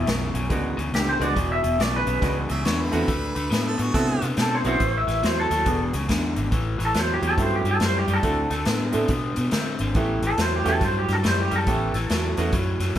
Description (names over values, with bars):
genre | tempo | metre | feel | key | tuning
electric blues shuffle | 140 BPM | 4/4 | swing 64% on 8ths | A mixolydian | A4 = 440 Hz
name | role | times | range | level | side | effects
electric guitar through a small old amp | melody | 0.0-12.4 s | G4 to E5 | -25 LUFS | equal | harmonic tremolo
overdriven electric guitar | riff | 0.0-13.0 s | E2 to C4 | -27 LUFS | left 1 dB | none
vintage muted fingered electric bass | bass | 0.0-13.0 s | E1 to D3 | -26 LUFS | equal | none
swinging big-band drum kit | drums | 0.1-13.0 s | hi-hat, kick drum, snare drum | -27 LUFS | equal | none
bright upright piano | accompaniment | 0.5-12.5 s | G#3 to A4 | -27 LUFS | right 3 dB | none
bright harmonica | second line | 2.5-4.3 s | F#4 to E5 | -29 LUFS | right 2 dB | none
room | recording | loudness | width
moderate studio ambience, RT60 0.5 s | band playing live in one room | -20 LUFS | side -11 dB against mid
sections
0.0-6.5 A section; 6.5-13.0 B section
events
clean electric guitar solo 6.5-13.0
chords
0.0 E7; 3.1 D7; 4.8 A5; 5.7 E7; 6.5 A7; 8.2 D7; 10.0 A7